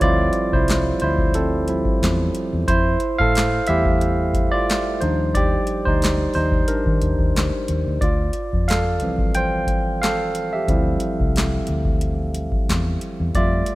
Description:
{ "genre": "R&B, neo-soul", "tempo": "90 BPM", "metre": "4/4", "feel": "swing 53% on 16ths", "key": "D minor", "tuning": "A4 = 441 Hz", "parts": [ { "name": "barky tine electric piano", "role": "accompaniment", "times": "0.0-13.8 s", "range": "E3 to G5", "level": "-21 LUFS", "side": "right 1 dB", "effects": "overdrive" }, { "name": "vintage muted fingered electric bass", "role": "bass", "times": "0.0-13.6 s", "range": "C2 to Eb3", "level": "-23 LUFS", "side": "equal", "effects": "none" }, { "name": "booming analog drum machine", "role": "drums", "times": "0.0-13.8 s", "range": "handclaps, hi-hat, kick drum, snare drum", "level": "-23 LUFS", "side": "equal", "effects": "none" } ], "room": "light reverb", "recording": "rough home demo mix", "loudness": "-18 LUFS", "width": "side -18 dB against mid", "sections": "0.0-13.8 A section", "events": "tine electric piano solo 0.0-13.8", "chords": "0.0 Dm11; 2.7 Fmaj9; 5.0 Ebmaj7; 8.0 Dm11", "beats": "| 0.01 0.68 1.34 2.01 | 2.68 3.35 4.01 4.68 | 5.34 6.01 6.68 7.34 | 8.01 8.68 9.35 10.01 | 10.68 11.35 12.01 12.68 | 13.35" }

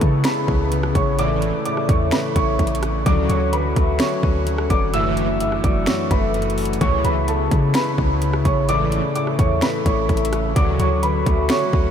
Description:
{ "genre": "hip hop, trap", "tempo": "128 BPM", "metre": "4/4", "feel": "half-time", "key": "unclear", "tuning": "A4 = 440 Hz", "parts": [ { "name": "dark concert grand piano", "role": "melody", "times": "0.0-11.9 s", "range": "A4 to E6", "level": "-23 LUFS", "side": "right 2 dB", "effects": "lush chorus, analog delay" }, { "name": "concert harp", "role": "accompaniment", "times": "0.0-11.9 s", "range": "F#2 to D4", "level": "-24 LUFS", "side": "left 5 dB", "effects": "none" }, { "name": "pipe organ, foundations", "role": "sustained chords", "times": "0.0-11.9 s", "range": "C#3 to F#4", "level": "-27 LUFS", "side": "right 1 dB", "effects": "none" }, { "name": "clean 808-style bass", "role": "bass", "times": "0.0-11.9 s", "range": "F#1 to C#3", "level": "-23 LUFS", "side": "equal", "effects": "none" }, { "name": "trap drum kit", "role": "drums", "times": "0.0-11.8 s", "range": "finger snaps, hi-hat, kick drum, rim click, snare drum", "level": "-23 LUFS", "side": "equal", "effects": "none" }, { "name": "big bright polysynth", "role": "stabs", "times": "1.2-10.9 s", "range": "C#2 to F#3", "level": "-30 LUFS", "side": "right 1 dB", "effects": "none" } ], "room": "moderate huge ambient reverb, RT60 8.5 s", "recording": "dreamy mix soaked in reverb", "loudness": "-17 LUFS", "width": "side -8 dB against mid", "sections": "0.0-11.9 A section", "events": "none", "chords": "0.0 C#m7; 1.2 A; 3.1 Dmaj7; 4.9 F#m7; 6.8 C#m7; 8.7 A; 10.6 Dmaj7", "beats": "0.25 0.72 | 1.19 1.66 2.12 2.59 | 3.06 3.53 4.00 4.47 | 4.94 5.41 5.87 6.34 | 6.81 7.28 7.75 8.22 | 8.69 9.15 9.62 10.09 | 10.56 11.03 11.50" }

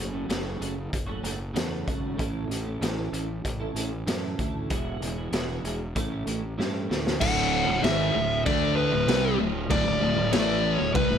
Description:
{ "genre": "quiet-loud alternative rock", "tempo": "96 BPM", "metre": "4/4", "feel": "straight", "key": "D major from 7.2 s", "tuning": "A4 = 440 Hz", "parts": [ { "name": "twelve-string electric guitar", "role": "arpeggios", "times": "0.0-7.2 s", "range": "E2 to A4", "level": "-33 LUFS", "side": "right 3 dB", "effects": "ensemble chorus" }, { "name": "fuzz fingered electric bass", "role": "bass", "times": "0.0-11.2 s", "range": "D1 to G2", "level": "-32 LUFS", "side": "equal", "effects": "overdrive" }, { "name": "raw garage drum kit", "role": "drums", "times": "0.3-11.1 s", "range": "crash cymbal, hi-hat, kick drum, snare drum", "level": "-30 LUFS", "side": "equal", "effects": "none" }, { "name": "dark smooth lead guitar", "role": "melody", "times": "7.2-11.2 s", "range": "B4 to F#5", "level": "-26 LUFS", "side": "equal", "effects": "overdrive" }, { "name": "thick fuzz guitar", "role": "riff", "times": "7.2-11.2 s", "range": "D2 to D4", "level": "-28 LUFS", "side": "left 12 dB", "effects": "distortion" }, { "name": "thick fuzz guitar", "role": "riff", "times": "7.2-11.2 s", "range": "D2 to D4", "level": "-28 LUFS", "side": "right 11 dB", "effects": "distortion" } ], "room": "little or no reverb", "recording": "none", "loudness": "-24 LUFS", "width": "side -8 dB against mid", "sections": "0.0-7.2 A section; 7.2-11.2 B section", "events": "drum fill 6.6-7.2", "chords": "0.0 F#m; 2.2 A; 4.7 E; 6.0 A7; 7.2 D5", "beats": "0.30 0.93 1.56 | 2.19 2.82 3.45 4.08 | 4.71 5.33 5.96 6.59 | 7.21 7.84 8.46 9.08 | 9.71 10.33 10.95" }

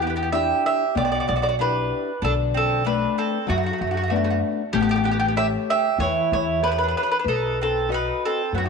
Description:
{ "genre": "italian folk, Italian serenade", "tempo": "95 BPM", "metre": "4/4", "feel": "straight", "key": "unclear", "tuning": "A4 = 439 Hz", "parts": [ { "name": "mandolin", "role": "melody", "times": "0.0-8.7 s", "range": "F#4 to E5", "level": "-24 LUFS", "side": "right 2 dB", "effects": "none" }, { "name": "mandolin", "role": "second line", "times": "0.0-8.7 s", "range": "A3 to G4", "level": "-27 LUFS", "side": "right 10 dB", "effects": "none" }, { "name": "nylon-string guitar", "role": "accompaniment", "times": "0.0-8.7 s", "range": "B2 to D#5", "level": "-26 LUFS", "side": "left 11 dB", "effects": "none" }, { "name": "upright bass", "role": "bass", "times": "0.0-8.7 s", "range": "A1 to F#2", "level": "-27 LUFS", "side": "equal", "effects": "transformer saturation" } ], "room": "moderate echo chamber reverb, RT60 2.4 s", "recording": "1960s-style stereo with parts hard left and right", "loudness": "-20 LUFS", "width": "side -5 dB against mid", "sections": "0.0-8.7 A section", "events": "none", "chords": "0.0 Em7; 2.2 Bm7; 4.7 A7; 7.3 B", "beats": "0.32 0.95 1.59 | 2.22 2.85 3.48 4.11 | 4.73 5.36 5.99 6.62 | 7.26 7.89 8.54" }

